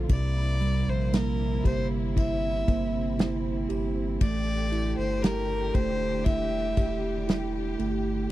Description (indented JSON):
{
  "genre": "pop ballad",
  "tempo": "58 BPM",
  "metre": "4/4",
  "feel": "straight",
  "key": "unclear",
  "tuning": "A4 = 438 Hz",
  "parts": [
    { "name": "bell-like tine electric piano", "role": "accompaniment", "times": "0.0-8.3 s", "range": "C3 to A4", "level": "-30 LUFS", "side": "right 5 dB", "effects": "none" },
    { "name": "warm studio string section", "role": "sustained chords", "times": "0.0-8.3 s", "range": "C3 to G4", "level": "-36 LUFS", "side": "left 3 dB", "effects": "none" },
    { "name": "warm sub bass", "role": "bass", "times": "0.0-8.3 s", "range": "E1 to C2", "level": "-31 LUFS", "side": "left 1 dB", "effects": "none" },
    { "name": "rich violin", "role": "melody", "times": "0.1-7.3 s", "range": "Bb4 to E5", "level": "-32 LUFS", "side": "left 2 dB", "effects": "tape echo" },
    { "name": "unplugged drum kit", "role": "drums", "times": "0.1-8.0 s", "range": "kick drum, ride cymbal, snare drum", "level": "-25 LUFS", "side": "equal", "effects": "none" }
  ],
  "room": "studio ambience",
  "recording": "dry, close 1970s-style studio recording",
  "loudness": "-24 LUFS",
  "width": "side -15 dB against mid",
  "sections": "0.0-8.3 A section",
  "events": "none",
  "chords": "0.1 C7; 4.2 A7sus4"
}